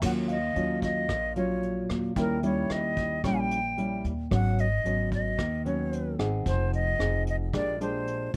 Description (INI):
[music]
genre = bossa nova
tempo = 112 BPM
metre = 4/4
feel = straight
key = unclear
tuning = A4 = 441 Hz
[part]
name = mellow tine electric piano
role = accompaniment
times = 0.0-7.6 s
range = F5 to G5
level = -45 LUFS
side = equal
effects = none
[part]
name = nylon-string guitar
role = accompaniment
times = 0.0-8.4 s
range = Ab2 to Ab4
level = -33 LUFS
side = equal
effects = none
[part]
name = upright bass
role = bass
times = 0.0-8.4 s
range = F1 to Eb2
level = -33 LUFS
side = equal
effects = none
[part]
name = vintage brush drum kit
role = drums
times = 0.0-8.4 s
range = crash cymbal, hi-hat, kick drum, rim click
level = -39 LUFS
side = equal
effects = none
[part]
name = breathy silver concert flute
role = melody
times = 0.1-8.3 s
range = Bb4 to Ab5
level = -33 LUFS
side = equal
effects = none
[sound]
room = light reverb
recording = dark, warm production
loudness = -28 LUFS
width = mono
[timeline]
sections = 0.0-8.4 A section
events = none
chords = 0.0 Ebm9; 2.2 Eb7b9; 4.3 Abm7; 6.5 Fm7; 7.5 Bb13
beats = | 0.02 0.56 1.09 1.63 | 2.17 2.70 3.24 3.78 | 4.31 4.85 5.39 5.92 | 6.46 7.00 7.53 8.07